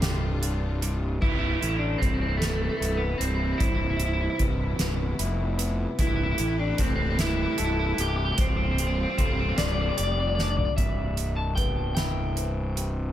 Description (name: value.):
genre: post-rock.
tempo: 50 BPM (dotted quarters).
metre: 6/8.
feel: straight.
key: C major.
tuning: A4 = 440 Hz.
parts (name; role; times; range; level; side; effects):
electric guitar through a small old amp; melody; 0.0-13.1 s; A3 to A5; -29 LUFS; equal; tape echo.
rich studio string section; sustained chords; 0.0-10.8 s; C3 to B4; -38 LUFS; left 1 dB; none.
electric guitar through a small old amp; arpeggios; 0.0-13.1 s; C2 to A4; -37 LUFS; left 3 dB; wide subtle chorus, tape echo.
vibraphone with medium mallets; arpeggios; 0.0-13.1 s; A4 to C5; -41 LUFS; right 6 dB; tape echo.
fuzz fingered electric bass; bass; 0.0-13.1 s; C1 to A1; -27 LUFS; equal; overdrive.
soft-mallet drum kit; drums; 0.0-13.0 s; crash cymbal, hi-hat, kick drum, snare drum, toms; -28 LUFS; equal; none.
room: small room reverb.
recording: none.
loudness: -24 LUFS.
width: side -12 dB against mid.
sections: 0.0-1.2 A section; 1.2-10.8 B section; 10.8-13.1 A section.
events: drum fill 10.4-10.8.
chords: 0.0 G7sus4/C; 1.2 Cmaj7; 6.0 Am7/C; 8.4 G7sus4/C; 10.8 Cmaj7.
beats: 0.03 | 1.22 2.41 | 3.60 4.79 | 5.99 7.18 | 8.38 9.57 | 10.77 11.97.